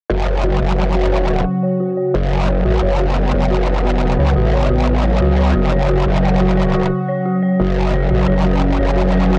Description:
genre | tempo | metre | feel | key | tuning
drum and bass | 176 BPM | 4/4 | straight | F# minor | A4 = 440 Hz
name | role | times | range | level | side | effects
sweeping resonant pad | sustained chords | 0.1-9.4 s | C#3 to F#4 | -21 LUFS | equal | chorus
dark detuned synth bell | arpeggios | 0.1-9.4 s | F#4 to C#5 | -25 LUFS | equal | chorus, low-pass filter, dub echo
growl bass | bass | 0.1-9.4 s | F#1 to C#2 | -18 LUFS | equal | chorus, tube saturation
room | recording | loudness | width
light reverb | none | -16 LUFS | mono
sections
0.1-9.4 A section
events
filter sweep on synth bell 0.1-9.4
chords
0.1 F#5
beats
| 0.10 0.44 0.78 1.12 | 1.46 1.80 2.14 2.48 | 2.82 3.16 3.50 3.85 | 4.19 4.53 4.87 5.21 | 5.55 5.89 6.23 6.57 | 6.91 7.25 7.60 7.94 | 8.28 8.62 8.96 9.30

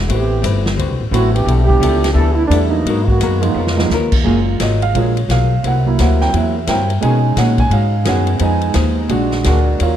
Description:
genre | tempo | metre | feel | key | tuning
jazz, big band swing | 173 BPM | 4/4 | swing 63% on 8ths | unclear | A4 = 440 Hz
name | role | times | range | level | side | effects
upright bass | bass | 0.0-10.0 s | F#1 to B2 | -15 LUFS | left 1 dB | none
muted trombone section | second line | 0.1-4.1 s | D#3 to A4 | -18 LUFS | right 2 dB | none
archtop guitar, miked and amplified | accompaniment | 0.1-10.0 s | A#2 to B4 | -23 LUFS | left 7 dB | none
swinging big-band drum kit | drums | 0.1-9.9 s | crash cymbal, hi-hat, kick drum, ride cymbal, snare drum | -22 LUFS | equal | none
warm concert grand piano | accompaniment | 1.1-10.0 s | E#3 to G#5 | -19 LUFS | right 6 dB | none
warm trombone section | sustained chords | 4.2-9.6 s | D#3 to Bb4 | -26 LUFS | right 3 dB | none
room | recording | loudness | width
light reverb | dark, warm production | -12 LUFS | side -10 dB against mid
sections
0.0-4.2 A section; 4.2-10.0 B section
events
trombone section solo 0.0-4.2; drum fill 3.6-3.9; grand piano solo 4.2-10.0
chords
0.1 Am9; 0.8 D13; 1.5 G69; 2.9 G#m9; 3.6 C#13; 4.2 F#maj9; 5.6 C7#11; 7.0 B69; 8.4 Fm7b5; 9.1 A#7b13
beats
| 0.09 0.44 0.79 1.13 | 1.48 1.83 2.17 2.52 | 2.87 3.21 3.56 3.90 | 4.25 4.60 4.94 5.29 | 5.64 5.98 6.33 6.68 | 7.02 7.37 7.71 8.06 | 8.41 8.75 9.10 9.45 | 9.79

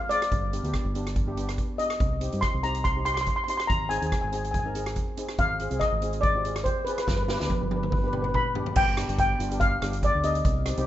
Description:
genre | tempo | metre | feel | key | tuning
calypso | 142 BPM | 4/4 | swing 54% on 16ths | unclear | A4 = 439 Hz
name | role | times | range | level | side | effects
steel pan | melody | 0.0-10.8 s | B4 to C6 | -27 LUFS | left 1 dB | ping-pong delay
steel pan | accompaniment | 0.1-10.9 s | Ab3 to Bb4 | -34 LUFS | equal | none
street-band drum kit | drums | 0.1-10.9 s | crash cymbal, hi-hat, kick drum, rim click, snare drum, toms | -29 LUFS | equal | none
fingered electric bass | bass | 0.3-10.9 s | G1 to G2 | -30 LUFS | equal | none
room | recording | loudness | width
light reverb | rough home demo mix, nothing above 7.8 kHz | -24 LUFS | side -12 dB against mid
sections
0.0-8.8 A section; 8.8-10.9 B section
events
drum fill 7.1-8.8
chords
0.3 G; 2.0 Cm; 3.7 Ab; 5.4 Fm7/Ab; 7.1 G; 8.8 G7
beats
| 0.31 0.73 1.15 1.58 | 2.00 2.42 2.85 3.27 | 3.69 4.12 4.54 4.96 | 5.39 5.81 6.23 6.66 | 7.08 7.50 7.92 8.35 | 8.77 9.19 9.61 10.03 | 10.45

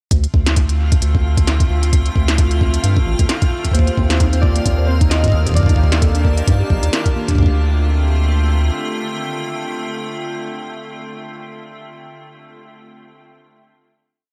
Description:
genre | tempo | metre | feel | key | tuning
IDM | 132 BPM | 4/4 | swing 56% on 16ths | D phrygian | A4 = 440 Hz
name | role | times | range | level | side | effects
icy glass pad | sustained chords | 0.4-11.8 s | D3 to Bb4 | -28 LUFS | equal | chorus, built-in reverb
round analog bass | bass | 0.1-8.7 s | A1 to G2 | -18 LUFS | equal | none
electronic kick drum | drums | 0.1-7.5 s | none | -18 LUFS | equal | none
industrial drum kit | drums | 0.1-7.4 s | hi-hat, snare drum | -27 LUFS | equal | analog delay
backwards swelling texture | texture | 0.8-7.4 s | F4 to F5 | -35 LUFS | equal | built-in reverb, analog chorus, sidechain pumping
warbly lo-fi synth keys | melody | 3.7-6.9 s | C5 to Eb5 | -30 LUFS | equal | chorus, diffuse ambient delay
warbly dusty pluck | arpeggios | 3.7-7.6 s | Bb3 to Eb5 | -30 LUFS | equal | chorus, analog delay
room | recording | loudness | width
light reverb, digital ambience | none | -16 LUFS | mono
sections
0.1-7.4 groove; 7.4-11.0 final chord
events
none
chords
0.1 Dm7; 3.7 Cm7/Eb; 5.6 Ebmaj7; 7.4 Dm7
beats
| 0.11 0.57 1.02 1.48 | 1.93 2.38 2.84 3.29 | 3.75 4.20 4.66 5.11 | 5.57 6.02 6.47 6.93 | 7.38 7.84 8.29 8.75 | 9.20 9.66 10.11 10.57

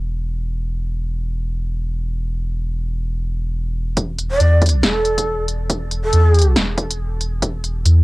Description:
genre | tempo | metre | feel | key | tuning
deep dubstep | 139 BPM | 4/4 | swing 60% on 16ths, half-time | unclear | A4 = 440 Hz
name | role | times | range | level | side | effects
soft dub sub bass | bass | 0.0-8.0 s | E1 to E2 | -18 LUFS | equal | none
deep house drum kit | drums | 4.0-8.0 s | hi-hat, snare drum | -20 LUFS | equal | cassette tape
electronic kick drum | drums | 4.0-7.5 s | none | -24 LUFS | equal | high-pass filter on kick, cassette tape, high-pass filter on room
breathy bright long shakuhachi | melody | 4.3-6.5 s | A4 to D5 | -21 LUFS | right 1 dB | cassette tape, dub echo
room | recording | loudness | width
light reverb | home recording on cassette | -17 LUFS | side -22 dB against mid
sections
0.0-4.0 A section; 4.0-8.0 B section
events
build-up 4.0-8.0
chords
0.0 N.C.; 4.0 Esus4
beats
0.09 | 0.52 0.95 1.38 1.81 | 2.24 2.68 3.11 3.54 | 3.97 4.40 4.83 5.26 | 5.70 6.13 6.56 6.99 | 7.42 7.86

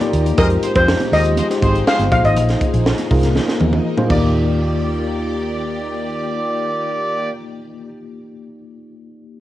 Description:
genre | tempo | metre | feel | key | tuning
polished 1980s jazz-funk pop | 121 BPM | 4/4 | straight | Eb major | A4 = 440 Hz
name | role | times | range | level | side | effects
mellow tine electric piano | accompaniment | 0.0-9.4 s | Ab3 to Eb5 | -22 LUFS | left 1 dB | medium stereo tremolo, lush chorus
string machine, violins | sustained chords | 0.0-7.3 s | Eb3 to D5 | -29 LUFS | equal | ensemble chorus
crisp fusion drum kit | drums | 0.0-4.2 s | crash cymbal, hi-hat, kick drum, snare drum, toms | -20 LUFS | right 1 dB | cassette tape
congas | percussion | 0.0-4.6 s | none | -29 LUFS | right 5 dB | none
vintage muted fingered electric bass | bass | 0.1-7.3 s | G1 to F2 | -19 LUFS | equal | none
steel pan | melody | 0.4-3.8 s | Bb4 to F5 | -18 LUFS | left 2 dB | plate reverb
warm horn section | second line | 0.4-7.3 s | Bb3 to Eb5 | -24 LUFS | right 1 dB | none
room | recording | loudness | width
moderate small room reverb, RT60 0.5 s | home recording on cassette | -15 LUFS | side -14 dB against mid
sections
0.0-4.4 A section; 4.4-8.3 B section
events
drum fill 3.4-4.4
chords
0.4 Fm9; 2.1 Bb9sus4; 4.1 Ebmaj7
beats
| 0.38 0.88 1.37 1.87 | 2.37 2.86 3.36 3.85 | 4.35 4.85 5.34 5.84 | 6.34 6.83 7.33 7.83

